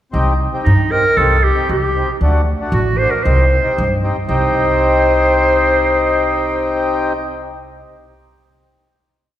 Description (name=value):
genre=klezmer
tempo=115 BPM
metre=2/4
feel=straight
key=C dorian sharp4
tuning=A4 = 440 Hz
part: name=mellow accordion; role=accompaniment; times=0.1-7.1 s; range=A3 to G4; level=-18 LUFS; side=left 2 dB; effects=none
part: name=upright bass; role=bass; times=0.1-7.8 s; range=A1 to G2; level=-17 LUFS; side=equal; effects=none
part: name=breathy clarinet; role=melody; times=0.6-7.1 s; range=Eb4 to C5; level=-16 LUFS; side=right 1 dB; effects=none
room=wet scoring stage reverb, RT60 2.0 s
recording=recorded in a church or concert hall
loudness=-12 LUFS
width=side -12 dB against mid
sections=0.1-4.3 A section; 4.3-6.4 final chord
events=none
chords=0.1 Cm; 2.2 D; 3.3 Cm